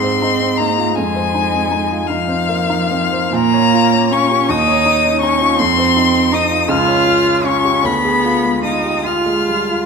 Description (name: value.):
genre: classical, slow romantic movement for piano trio.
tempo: 52 BPM (dotted quarters).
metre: 6/8.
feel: uneven beats, rubato.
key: unclear.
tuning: A4 = 439 Hz.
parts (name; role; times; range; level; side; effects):
clear violin; melody; 0.0-9.9 s; F5 to F6; -16 LUFS; left 8 dB; none.
dark cello; second line; 0.0-9.9 s; F3 to F4; -18 LUFS; right 5 dB; none.
dark baby grand piano; accompaniment; 0.0-9.9 s; Db2 to Db5; -18 LUFS; right 1 dB; none.
room: wet recital hall reverb, RT60 1.3 s.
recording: minimal, uncompressed stereo recording.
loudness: -12 LUFS.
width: side -5 dB against mid.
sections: 0.0-9.9 A section.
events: none.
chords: 0.0 Ab; 1.0 Fm7; 3.3 Bbm; 4.5 Dbadd9/Eb; 5.6 F5; 6.7 Db; 7.8 Ddim7.